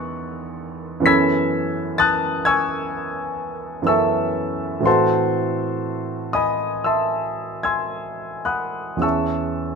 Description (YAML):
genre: classical, impressionist solo piano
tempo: 51-66 BPM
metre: 4/4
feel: rubato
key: unclear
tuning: A4 = 439 Hz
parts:
  - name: clear concert grand piano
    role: solo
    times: 0.0-9.8 s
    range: E2 to C#7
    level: -19 LUFS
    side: equal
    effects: none
room: light reverb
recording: close, detailed microphones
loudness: -19 LUFS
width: side -5 dB against mid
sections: 0.0-9.8 A section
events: none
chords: 0.0 Emaj7; 1.1 F#m11; 4.9 Am6; 9.0 E6